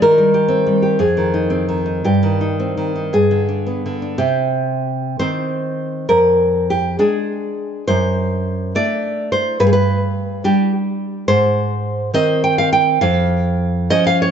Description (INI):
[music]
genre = romantic piece for solo classical guitar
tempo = 55-73 BPM (dotted quarters)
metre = 6/8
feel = rubato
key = C minor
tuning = A4 = 440 Hz
[part]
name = nylon-string guitar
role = solo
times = 0.0-14.3 s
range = F2 to G5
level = -15 LUFS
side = equal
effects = slapback echo
[sound]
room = moderate plate reverb, RT60 2.2 s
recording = nothing above 7.8 kHz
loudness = -15 LUFS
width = side -8 dB against mid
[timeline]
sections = 0.0-4.2 A section; 4.2-14.3 B section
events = none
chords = 0.0 Cm/Eb; 1.0 Fm7; 2.1 Cm/G; 3.1 G; 4.2 Cm; 6.1 Ddim/F; 7.9 D7/F#; 9.6 G; 11.3 Ab; 13.0 Db/F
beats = | 0.03 1.00 | 2.05 3.12 | 4.17 5.19 | 6.10 6.99 | 7.87 8.74 | 9.61 10.45 | 11.28 12.13 | 13.01 13.91